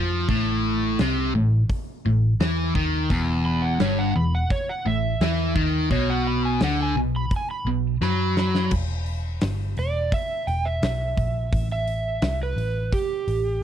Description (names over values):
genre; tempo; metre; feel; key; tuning
blues rock power trio and southern rock; 86 BPM; 4/4; straight; unclear; A4 = 440 Hz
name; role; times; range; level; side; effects
overdriven electric guitar; riff; 0.0-8.7 s; E2 to F#3; -22 LUFS; left 1 dB; none
vintage muted picked electric bass; bass; 0.0-13.6 s; E1 to F#2; -26 LUFS; equal; none
big rock drum kit; drums; 0.3-13.4 s; crash cymbal, hi-hat, kick drum, snare drum; -28 LUFS; equal; none
overdriven slide guitar; melody; 3.5-13.6 s; G4 to B5; -28 LUFS; right 3 dB; slapback echo
room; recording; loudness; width
little or no reverb; dry, close 1970s-style studio recording; -21 LUFS; side -9 dB against mid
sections
0.0-8.7 A section; 8.7-13.6 B section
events
drum fill 8.0-8.7; electric slide guitar solo 8.7-13.6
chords
0.3 A5; 3.1 Emadd9; 4.5 A5; 5.9 B5; 8.7 E5; 11.5 A5